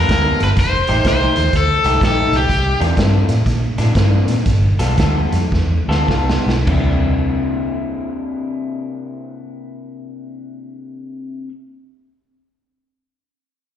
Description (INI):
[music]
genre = electric blues shuffle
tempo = 100-125 BPM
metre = 4/4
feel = swing 64% on 8ths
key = C mixolydian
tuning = A4 = 443 Hz
[part]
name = cranked stack guitar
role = melody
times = 0.0-2.8 s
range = G4 to C5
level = -17 LUFS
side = left 2 dB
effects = overdrive, slapback echo
[part]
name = electric guitar through a small old amp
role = riff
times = 0.0-11.5 s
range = C3 to A4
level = -22 LUFS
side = left 2 dB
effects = wide subtle chorus, slapback echo
[part]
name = vintage muted fingered electric bass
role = bass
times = 0.0-11.4 s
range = F1 to Bb2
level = -17 LUFS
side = equal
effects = none
[part]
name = raw garage drum kit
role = drums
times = 0.1-6.9 s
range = crash cymbal, hi-hat, kick drum, snare drum, toms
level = -20 LUFS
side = equal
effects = none
[sound]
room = small room ambience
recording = live gig heard through the venue's PA, recital hall reverb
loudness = -14 LUFS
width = side -10 dB against mid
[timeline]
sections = 0.0-6.7 A section; 6.7-11.5 B section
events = slowing down 2.5-6.7; drum fill 5.5-6.7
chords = 0.0 G9; 0.6 F9; 2.5 C9; 4.5 G9; 6.7 C9